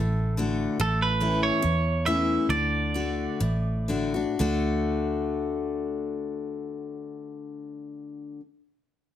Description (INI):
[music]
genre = country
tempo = 116-145 BPM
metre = 4/4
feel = straight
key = D major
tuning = A4 = 440 Hz
[part]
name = twangy electric guitar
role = melody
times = 0.0-3.9 s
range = A4 to E5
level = -28 LUFS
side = right 4 dB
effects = none
[part]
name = picked steel-string acoustic guitar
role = accompaniment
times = 0.0-8.4 s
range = E2 to F#4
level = -28 LUFS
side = left 4 dB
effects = none
[part]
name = vintage muted fingered electric bass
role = bass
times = 0.0-8.4 s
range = A1 to E2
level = -28 LUFS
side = right 1 dB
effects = none
[sound]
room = light reverb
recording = none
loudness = -24 LUFS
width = side -11 dB against mid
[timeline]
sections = 0.0-4.4 A section; 4.4-8.5 B section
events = slowing down 0.8-4.4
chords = 0.0 D; 0.8 A; 2.5 D